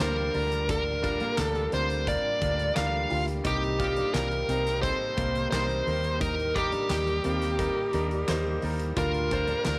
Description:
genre	piano-driven pop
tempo	87 BPM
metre	4/4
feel	straight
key	unclear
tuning	A4 = 440 Hz
part	dark smooth lead guitar	melody	0.0-9.8 s	G4 to F5	-31 LUFS	equal	overdrive, slapback echo
part	clear concert grand piano	accompaniment	0.0-9.8 s	C3 to C5	-36 LUFS	equal	none
part	bright studio string section	sustained chords	0.0-9.8 s	C3 to Bb4	-45 LUFS	equal	none
part	fingerpicked steel-string acoustic guitar	riff	0.0-9.6 s	Bb3 to F4	-40 LUFS	equal	none
part	vintage muted fingered electric bass	bass	0.0-9.8 s	C2 to Eb2	-34 LUFS	equal	none
part	huge arena drum kit	drums	0.0-9.8 s	handclaps, hi-hat, kick drum, snare drum	-38 LUFS	equal	none
room	light reverb, small room ambience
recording	none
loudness	-28 LUFS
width	mono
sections	0.0-9.8 A section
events	none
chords	0.3 Gm7/D; 3.5 Cm7; 5.9 Eb; 9.0 Bb6/D

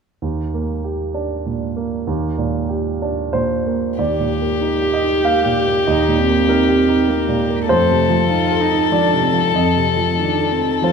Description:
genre	neoclassical piano and strings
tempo	96 BPM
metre	3/4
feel	rubato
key	unclear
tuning	A4 = 440 Hz
part	warm grand piano	accompaniment	0.2-10.9 s	Eb2 to F5	-18 LUFS	right 2 dB	none
part	warm violin	melody	4.0-10.9 s	G4 to A4	-18 LUFS	left 6 dB	none
part	dark cello	second line	4.6-10.9 s	A3 to G4	-21 LUFS	right 4 dB	none
room	moderate concert hall reverb, RT60 1.9 s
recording	minimal, uncompressed stereo recording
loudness	-15 LUFS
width	side -6 dB against mid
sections	0.2-4.0 A section; 4.0-10.9 B section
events	none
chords	0.2 Ebmaj7; 7.7 F7

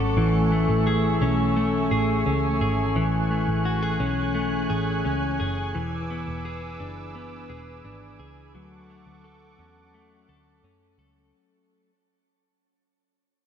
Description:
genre	dream pop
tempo	86 BPM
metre	4/4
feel	straight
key	A major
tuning	A4 = 440 Hz
part	warm analog pad	sustained chords	0.0-11.3 s	A3 to F#6	-29 LUFS	right 4 dB	chorus
part	clean electric guitar	arpeggios	0.0-11.9 s	E3 to A4	-25 LUFS	left 3 dB	wide subtle chorus, ping-pong delay
part	vintage muted picked electric bass	bass	0.0-11.3 s	E1 to F#2	-28 LUFS	right 1 dB	none
room	moderate shimmer reverb, RT60 6.8 s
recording	dark, warm production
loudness	-22 LUFS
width	side -8 dB against mid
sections	0.0-11.3 A section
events	fade-out 0.0-11.3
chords	0.2 Amaj7; 5.8 E7; 8.5 Dmaj7

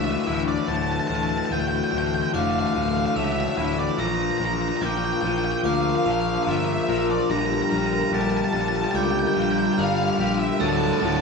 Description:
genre	post-rock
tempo	72 BPM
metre	4/4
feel	straight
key	D minor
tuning	A4 = 440 Hz
part	octave-fuzz lead guitar	melody	0.0-11.2 s	D5 to Bb5	-27 LUFS	right 2 dB	distortion
part	shimmering ambient pad	sustained chords	0.0-11.2 s	E3 to D5	-29 LUFS	right 1 dB	chorus, built-in reverb
part	glockenspiel with brass mallets	arpeggios	0.0-11.2 s	D6 to F7	-37 LUFS	right 6 dB	none
part	twangy electric guitar	arpeggios	0.0-11.2 s	D2 to Bb4	-32 LUFS	left 2 dB	none
part	raw garage guitar	riff	0.0-11.2 s	D2 to Bb3	-25 LUFS	left 6 dB	overdrive
part	fingered electric bass	bass	0.0-11.2 s	D1 to D2	-29 LUFS	equal	none
part	distorted electric guitar	riff	10.6-11.2 s	D2 to D3	-23 LUFS	right 8 dB	distortion
room	wet large studio reverb, RT60 1.2 s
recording	band playing live in one room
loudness	-20 LUFS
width	side -4 dB against mid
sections	0.0-11.2 A section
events	build-up 0.0-11.2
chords	0.0 Dmadd9; 4.0 Bb; 7.3 Gm7/Bb; 10.6 Dmadd9

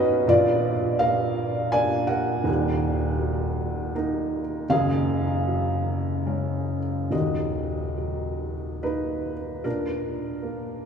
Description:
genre	neoclassical minimalist piano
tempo	68-83 BPM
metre	3/4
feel	rubato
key	Eb minor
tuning	A4 = 441 Hz
part	felt-muted upright piano	solo	0.0-10.9 s	Eb1 to Ab5	-23 LUFS	equal	none
room	wet cathedral reverb, RT60 6.3 s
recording	recorded in a church or concert hall, small room reverb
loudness	-23 LUFS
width	side -7 dB against mid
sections	0.0-9.6 A section; 9.6-10.9 B section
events	none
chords	0.3 Bb; 2.5 Ebm; 4.7 Gbsus2; 7.1 Ebm; 9.6 Bb

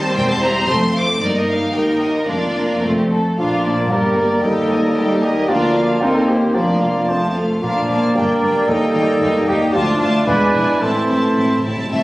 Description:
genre	quick classical-period movement for symphony orchestra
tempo	113 BPM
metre	2/4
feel	straight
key	Bb major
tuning	A4 = 440 Hz
part	warm chamber violin section	melody	0.0-12.0 s	Bb4 to D6	-26 LUFS	left 1 dB	none
part	rich chamber violin section	second line	0.0-12.0 s	A3 to C5	-24 LUFS	equal	none
part	warm chamber viola section	accompaniment	0.0-12.0 s	F3 to Eb4	-22 LUFS	equal	none
part	rich chamber cello section	bass	0.0-12.0 s	D2 to Bb2	-26 LUFS	equal	none
part	rich chamber double bass section	bass	0.0-12.0 s	E1 to Eb2	-25 LUFS	equal	none
part	clear clarinet	second line	3.4-11.6 s	A3 to C4	-26 LUFS	equal	none
part	concert flute	second line	3.4-11.6 s	G5 to Bb5	-28 LUFS	equal	none
part	warm oboe	second line	3.4-11.6 s	C5 to Eb5	-24 LUFS	equal	none
part	warm bassoon	accompaniment	3.4-11.6 s	Eb3 to G3	-24 LUFS	equal	none
part	clear French horn section	sustained chords	3.4-11.6 s	F3 to Eb4	-21 LUFS	equal	none
part	dark trumpet	stabs	3.4-11.6 s	F4 to B4	-20 LUFS	right 1 dB	none
part	timpani	percussion	10.8-12.0 s	A2	-29 LUFS	equal	none
room	wet stone room reverb, RT60 1.1 s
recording	recorded on a phone in the room, club reverb, compression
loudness	-14 LUFS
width	side -18 dB against mid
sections	0.0-3.4 A section; 3.4-11.9 B section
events	timpani fill 10.8-11.9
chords	0.1 C7/E; 0.7 F; 1.2 Eb/G; 2.3 Bb/F; 2.8 F; 3.4 Bb; 3.9 Gm; 4.4 Eb; 5.5 Bb/D; 6.0 Cm7/Eb; 6.6 Bb/F; 7.1 F; 7.6 Bb; 8.2 Gm; 8.7 Eb; 9.7 Dm; 10.3 E7; 10.8 Am

